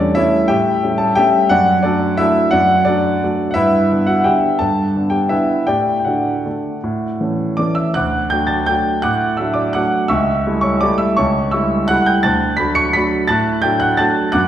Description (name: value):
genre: classical, piano waltz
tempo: 152-186 BPM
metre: 3/4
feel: rubato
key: D major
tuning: A4 = 441 Hz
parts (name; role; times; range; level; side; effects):
- warm grand piano; solo; 0.0-14.5 s; C#2 to C#7; -14 LUFS; equal; none
room: wet recital hall reverb, RT60 1.6 s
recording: heard from further back in the room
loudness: -14 LUFS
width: side -10 dB against mid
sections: 0.0-8.0 A section; 8.0-14.5 B section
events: none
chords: 0.0 A7/E; 1.5 D/F#; 3.6 Em7/G; 5.7 D/A; 6.8 A; 8.0 D; 10.1 A7/C#; 12.3 D